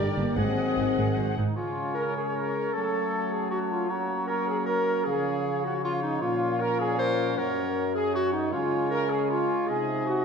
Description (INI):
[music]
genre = cinematic, heroic adventure film score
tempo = 155 BPM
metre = 3/4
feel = straight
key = Db major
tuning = A4 = 444 Hz
[part]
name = dark symphonic violin section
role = melody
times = 0.0-1.3 s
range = D5 to Gb5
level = -37 LUFS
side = left 4 dB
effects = none
[part]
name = clear clarinet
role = second line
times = 0.0-10.2 s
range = Eb4 to C5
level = -31 LUFS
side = left 1 dB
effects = none
[part]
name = mellow hollow concert flute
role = second line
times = 0.0-10.2 s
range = F5 to Bb5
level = -35 LUFS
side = left 2 dB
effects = none
[part]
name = warm oboe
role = second line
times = 0.0-10.2 s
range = Db5 to Eb5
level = -37 LUFS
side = right 2 dB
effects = none
[part]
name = warm symphonic violin section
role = second line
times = 0.0-1.3 s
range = Ab4 to Bb4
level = -43 LUFS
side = equal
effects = none
[part]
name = warm symphonic viola section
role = accompaniment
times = 0.0-1.5 s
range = D4 to Eb5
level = -38 LUFS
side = left 2 dB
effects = none
[part]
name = mellow French horn section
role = sustained chords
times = 0.0-10.2 s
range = F3 to Eb4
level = -32 LUFS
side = left 4 dB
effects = none
[part]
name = warm trombone section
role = sustained chords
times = 0.0-10.2 s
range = Gb2 to G3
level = -33 LUFS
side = right 3 dB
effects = none
[part]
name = mellow trumpet section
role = stabs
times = 0.0-10.2 s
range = Eb4 to Bb4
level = -31 LUFS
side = right 1 dB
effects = none
[part]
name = rich studio double bass section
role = bass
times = 0.0-1.4 s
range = G1 to Ab1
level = -31 LUFS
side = right 3 dB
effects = none
[part]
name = warm studio cello section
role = bass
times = 0.0-1.4 s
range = G2 to Ab2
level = -32 LUFS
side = right 2 dB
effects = none
[sound]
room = wet scoring stage reverb, RT60 1.9 s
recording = dark, warm production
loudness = -24 LUFS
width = side -6 dB against mid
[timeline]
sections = 0.0-1.6 A section; 1.6-10.2 B section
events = none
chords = 0.4 Ab7; 1.6 Db; 2.7 Gbm; 3.9 Gb; 5.1 Db; 6.2 Bbm; 7.4 Gb; 8.5 Db; 9.7 Ab/C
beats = | 0.37 0.77 1.17 | 1.57 1.96 2.35 | 2.74 3.13 3.51 | 3.90 4.29 4.67 | 5.06 5.45 5.83 | 6.22 6.61 6.99 | 7.38 7.76 8.14 | 8.53 8.91 9.30 | 9.69 10.08